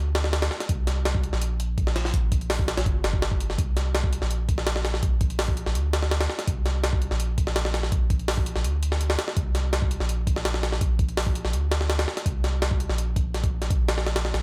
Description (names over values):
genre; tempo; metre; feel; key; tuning
drum and bass, jungle; 166 BPM; 4/4; straight; unclear; A4 = 440 Hz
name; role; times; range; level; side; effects
soft dub sub bass; bass; 0.0-14.4 s; G1 to D2; -28 LUFS; equal; none
jungle sampler-style drum kit; drums; 0.1-14.4 s; hi-hat, kick drum, snare drum; -28 LUFS; equal; none
room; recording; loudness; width
little or no reverb; none; -25 LUFS; mono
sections
0.0-14.4 A section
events
none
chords
none